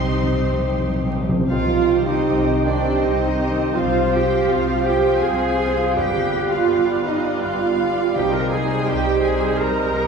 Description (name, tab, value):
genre	classical, slow romantic movement for symphony orchestra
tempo	82 BPM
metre	3/4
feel	rubato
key	C minor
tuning	A4 = 440 Hz
part	rich studio violin section	melody	0.0-10.1 s	C5 to C6	-35 LUFS	left 6 dB	none
part	rich chamber violin section	second line	0.0-10.1 s	G4 to Bb5	-30 LUFS	left 3 dB	none
part	rich chamber viola section	accompaniment	0.0-10.1 s	G3 to G4	-28 LUFS	right 3 dB	none
part	concert harp	arpeggios	0.0-10.1 s	G2 to D6	-28 LUFS	left 7 dB	none
part	dark chamber cello section	bass	0.0-10.1 s	C3 to Bb4	-22 LUFS	right 5 dB	none
part	rich studio double bass section	bass	0.0-10.1 s	G1 to C2	-27 LUFS	right 2 dB	none
part	timpani	percussion	0.0-9.2 s	G2 to C3	-27 LUFS	equal	none
part	bright clarinet	second line	1.5-10.1 s	D4 to Bb4	-27 LUFS	right 2 dB	none
part	silver concert flute	second line	1.5-10.1 s	Eb5 to G5	-30 LUFS	equal	none
part	warm oboe	second line	1.5-10.1 s	B4 to C5	-32 LUFS	equal	none
part	warm bassoon	accompaniment	1.5-10.0 s	Eb3 to G3	-26 LUFS	equal	none
part	dark French horn section	sustained chords	1.5-10.1 s	B3 to G4	-27 LUFS	equal	none
room	wet church reverb, RT60 3.2 s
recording	recorded in a church or concert hall, vinyl crackle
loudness	-17 LUFS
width	side -6 dB against mid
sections	0.0-1.5 A section; 1.5-10.1 B section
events	timpani fill 0.0-1.5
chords	0.0 Cm; 3.7 Fm/C; 5.9 G7; 8.1 Cm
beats	0.69 | 1.49 2.26 3.01 | 3.74 4.48 5.21 | 5.95 6.68 7.42 | 8.14 8.87 9.58